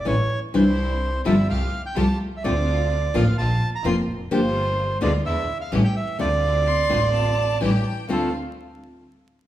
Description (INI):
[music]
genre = tango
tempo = 127 BPM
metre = 4/4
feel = rubato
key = D minor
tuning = A4 = 440 Hz
[part]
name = bandoneon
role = melody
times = 0.0-8.3 s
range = A4 to C6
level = -26 LUFS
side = right 4 dB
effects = none
[part]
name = clear double bass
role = bass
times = 0.0-8.3 s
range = F1 to E2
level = -24 LUFS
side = equal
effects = none
[part]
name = nylon-string guitar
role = accompaniment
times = 0.1-8.3 s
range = B2 to A4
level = -23 LUFS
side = left 2 dB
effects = none
[part]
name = clear studio string section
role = stabs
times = 0.5-8.3 s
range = G3 to G4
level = -33 LUFS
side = right 1 dB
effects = none
[part]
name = warm violin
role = second line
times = 6.7-8.3 s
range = F5 to C6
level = -29 LUFS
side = left 4 dB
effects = none
[sound]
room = wet recital hall reverb, RT60 1.6 s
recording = recorded in a church or concert hall, vinyl crackle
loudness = -19 LUFS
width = side -13 dB against mid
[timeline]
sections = 0.0-8.1 A section; 8.1-9.5 B section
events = none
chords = 0.0 A; 0.5 Cadd9; 1.5 Fadd9/C; 2.4 Dm7; 3.4 Bbsus2; 4.3 Gm7; 5.2 E7; 5.7 A7; 6.2 Dm7; 7.6 A7; 8.1 Dm7